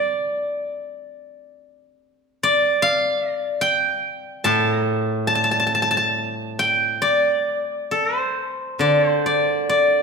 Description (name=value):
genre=chinese traditional, Chinese solo plucked strings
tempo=66-75 BPM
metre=4/4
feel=rubato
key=D yu mode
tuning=A4 = 439 Hz
part: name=steel-string zither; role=solo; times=0.0-10.0 s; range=A2 to A5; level=-18 LUFS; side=equal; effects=none
room=wet recital hall reverb, RT60 1.7 s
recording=recorded in a church or concert hall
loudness=-18 LUFS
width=side -5 dB against mid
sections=0.0-8.8 A section; 8.8-10.0 B section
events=none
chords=none